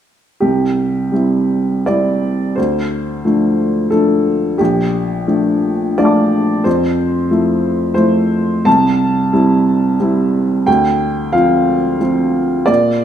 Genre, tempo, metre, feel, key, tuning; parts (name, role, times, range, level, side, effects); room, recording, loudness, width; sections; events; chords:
neoclassical minimalist piano; 79-94 BPM; 3/4; rubato; A4 = 440 Hz
warm upright piano; solo; 0.4-13.0 s; Bb1 to D6; -12 LUFS; equal
moderate scoring stage reverb, RT60 1.4 s; minimal, uncompressed stereo recording; -12 LUFS; side -9 dB against mid
0.4-13.0 A section
0.4 C; 2.6 Dm7; 4.6 Bbmaj7; 6.7 Fmaj7; 8.7 C; 10.7 Dm7